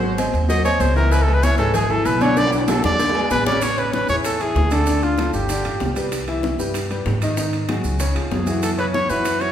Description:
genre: Afro-Cuban jazz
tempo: 192 BPM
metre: 4/4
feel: straight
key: A major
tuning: A4 = 440 Hz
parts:
  - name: clear concert grand piano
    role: accompaniment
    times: 0.0-9.5 s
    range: C#3 to F#5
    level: -23 LUFS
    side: left 1 dB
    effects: none
  - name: upright bass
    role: bass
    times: 0.0-9.5 s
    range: G1 to G#2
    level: -22 LUFS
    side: equal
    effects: none
  - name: congas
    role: percussion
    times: 0.0-9.5 s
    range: none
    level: -29 LUFS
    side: left 2 dB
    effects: none
  - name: agogo bells and timbales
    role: percussion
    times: 0.2-9.5 s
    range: none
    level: -28 LUFS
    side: right 4 dB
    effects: none
  - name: cowbell and bongos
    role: percussion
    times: 0.2-9.4 s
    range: none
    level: -30 LUFS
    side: left 4 dB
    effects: none
  - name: maracas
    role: percussion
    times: 0.2-9.5 s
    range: none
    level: -34 LUFS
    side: right 4 dB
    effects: none
  - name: warm trumpet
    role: melody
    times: 0.5-5.9, 8.3-9.5 s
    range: F4 to D#5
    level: -22 LUFS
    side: equal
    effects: none
room: wet recital hall reverb, RT60 1.8 s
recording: recorded in a church or concert hall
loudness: -17 LUFS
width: side -10 dB against mid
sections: 0.0-3.6 A section; 3.6-9.5 B section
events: trumpet solo 0.0-3.6; drum fill 2.4-3.6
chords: 0.0 G#7; 1.1 C#m7; 2.4 Bm7; 3.0 E6; 3.6 Amaj7; 4.9 Dm; 5.5 G9; 6.1 Cmaj7; 7.4 G#5; 8.0 C#; 8.6 F#5

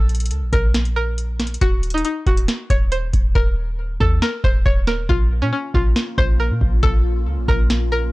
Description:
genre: hip hop, trap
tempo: 138 BPM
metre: 4/4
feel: half-time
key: Bb harmonic minor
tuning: A4 = 441 Hz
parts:
  - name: string-like resonator pluck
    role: melody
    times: 0.0-8.1 s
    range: Db4 to Db5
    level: -24 LUFS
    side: left 1 dB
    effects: chorus, low-pass filter
  - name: clean 808-style bass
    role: bass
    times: 0.0-8.1 s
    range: Eb1 to Bb2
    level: -19 LUFS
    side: equal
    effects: none
  - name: booming analog drum machine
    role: drums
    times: 0.1-7.8 s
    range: hi-hat, kick drum, snare drum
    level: -19 LUFS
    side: equal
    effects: vintage 12-bit sampler grit
  - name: glassy FM pad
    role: sustained chords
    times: 5.1-8.1 s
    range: Bb3 to F4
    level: -30 LUFS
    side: left 3 dB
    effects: ensemble chorus, built-in reverb
room: little or no reverb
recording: dry, gritty hardware recording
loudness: -16 LUFS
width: side -20 dB against mid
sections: 0.0-8.1 A section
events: hi-hats muted 3.4-5.1, 5.1-8.1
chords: 0.0 N.C.; 1.6 Ebm; 5.1 Bbm

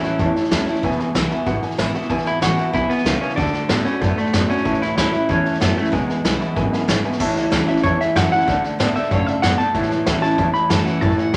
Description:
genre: rockabilly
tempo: 188 BPM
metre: 4/4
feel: straight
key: A major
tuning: A4 = 440 Hz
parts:
  - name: clean electric guitar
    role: melody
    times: 0.0-11.4 s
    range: G#3 to B5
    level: -24 LUFS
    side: equal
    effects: none
  - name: dark upright piano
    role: accompaniment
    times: 0.0-11.4 s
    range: B4 to B5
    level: -30 LUFS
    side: equal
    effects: none
  - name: picked steel-string acoustic guitar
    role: accompaniment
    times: 0.0-11.4 s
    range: E2 to F#4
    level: -28 LUFS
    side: equal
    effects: none
  - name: electric guitar through a small old amp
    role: riff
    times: 0.0-11.4 s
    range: E2 to B3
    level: -26 LUFS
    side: equal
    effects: tremolo
  - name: upright bass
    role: bass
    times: 0.0-11.4 s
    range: E1 to A2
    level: -27 LUFS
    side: equal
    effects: none
  - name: vintage brush drum kit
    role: drums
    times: 0.0-11.4 s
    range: crash cymbal, hi-hat, kick drum, snare drum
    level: -26 LUFS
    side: equal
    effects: none
room: moderate large studio reverb, RT60 1.4 s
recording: none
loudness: -19 LUFS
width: mono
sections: 0.0-7.2 A section; 7.2-11.4 B section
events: upright piano fill 6.6-7.2; clean electric guitar solo 7.2-11.4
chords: 0.0 A; 0.8 E; 3.4 D; 4.7 A; 5.9 E; 7.2 A; 8.5 D; 9.7 A

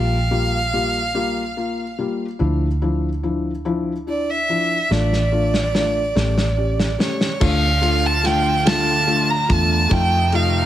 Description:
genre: six-eight pop ballad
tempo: 48 BPM (dotted quarters)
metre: 6/8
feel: straight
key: D minor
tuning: A4 = 439 Hz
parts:
  - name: warm violin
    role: melody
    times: 0.0-10.7 s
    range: C#5 to Bb5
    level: -21 LUFS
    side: right 2 dB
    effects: digital delay
  - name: felt-muted upright piano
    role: accompaniment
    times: 0.0-10.6 s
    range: F3 to G4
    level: -24 LUFS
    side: left 4 dB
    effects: none
  - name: vintage muted fingered electric bass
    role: bass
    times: 0.0-10.7 s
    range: A1 to F2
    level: -21 LUFS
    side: right 1 dB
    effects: none
  - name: loose indie drum kit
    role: drums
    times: 4.9-10.5 s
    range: crash cymbal, kick drum, ride cymbal, snare drum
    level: -23 LUFS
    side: equal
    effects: none
  - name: chorused pulse-width pad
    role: sustained chords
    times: 7.4-10.7 s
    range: C3 to F4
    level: -25 LUFS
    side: right 4 dB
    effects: none
room: light reverb, studio reverb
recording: none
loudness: -17 LUFS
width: side -12 dB against mid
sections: 0.0-7.4 A section; 7.4-10.7 B section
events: drum fill 4.9-7.4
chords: 0.0 Gm7/Bb; 2.4 Dmadd9; 4.9 Dm/A; 6.2 A7; 7.4 Dm; 9.9 F7

